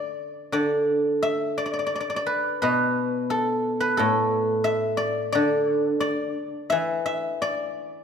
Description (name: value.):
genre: chinese traditional, Chinese solo plucked strings.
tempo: 86 BPM.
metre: 4/4.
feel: rubato.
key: unclear.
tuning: A4 = 440 Hz.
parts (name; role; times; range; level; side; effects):
guzheng; solo; 0.0-8.0 s; A2 to E5; -22 LUFS; equal; none.
room: light reverb.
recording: minimal, uncompressed stereo recording.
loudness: -22 LUFS.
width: side -7 dB against mid.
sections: 0.0-8.0 A section.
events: none.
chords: none.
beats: 0.54 1.25 1.95 | 2.64 3.33 4.00 4.68 | 5.36 6.04 6.74 7.45.